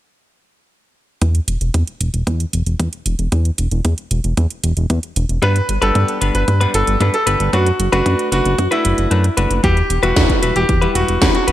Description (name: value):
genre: italo disco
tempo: 114 BPM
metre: 4/4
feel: straight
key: E minor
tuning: A4 = 440 Hz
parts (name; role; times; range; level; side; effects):
- chorused synth bass; bass; 1.2-11.5 s; E1 to G2; -16 LUFS; equal; none
- electronic kick drum; drums; 1.2-11.3 s; none; -20 LUFS; equal; high-pass filter on kick, studio reverb
- house drum kit; drums; 1.2-11.5 s; hi-hat, snare drum; -22 LUFS; right 2 dB; studio reverb, gated reverb
- bright grand piano; melody; 5.4-11.5 s; E4 to B4; -19 LUFS; equal; digital delay
- direct-recorded clean electric guitar; stabs; 5.4-11.5 s; G3 to B4; -20 LUFS; left 3 dB; none
room: light reverb, digital ambience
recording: bright 1980s-style digital production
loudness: -14 LUFS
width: side -13 dB against mid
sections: 1.2-9.6 A section; 9.6-11.5 B section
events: kick drops out 9.1-9.6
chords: 1.2 N.C.; 5.4 G; 7.5 Bm7/F#; 9.6 Emadd9